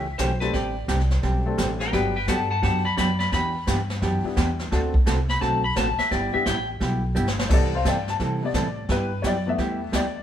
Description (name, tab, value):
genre	country, western swing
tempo	172 BPM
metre	4/4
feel	swing 64% on 8ths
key	G major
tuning	A4 = 440 Hz
part	clean lap steel guitar	second line	0.0-6.7 s	Bb4 to B5	-26 LUFS	left 3 dB	none
part	hollow-body jazz guitar	accompaniment	0.0-10.1 s	C#3 to A4	-28 LUFS	right 3 dB	none
part	upright bass	bass	0.0-10.2 s	G1 to C3	-26 LUFS	equal	none
part	jazz brush drum kit	drums	0.2-10.2 s	brushed snare drum, crash cymbal, hi-hat, kick drum, snare drum	-27 LUFS	equal	none
part	clear upright piano	accompaniment	0.4-10.2 s	C3 to A5	-28 LUFS	left 4 dB	none
room	moderate stone room reverb, RT60 1.0 s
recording	band playing live in one room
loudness	-21 LUFS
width	side -10 dB against mid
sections	0.0-7.5 A section; 7.5-10.2 A section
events	electric slide guitar solo 0.0-7.5; drum fill 7.2-7.5; upright piano solo 7.5-10.2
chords	0.0 A7; 0.5 D7sus4; 1.9 Gmaj7; 3.3 Em7; 4.7 D7; 6.1 G6; 7.5 Am7; 8.9 G69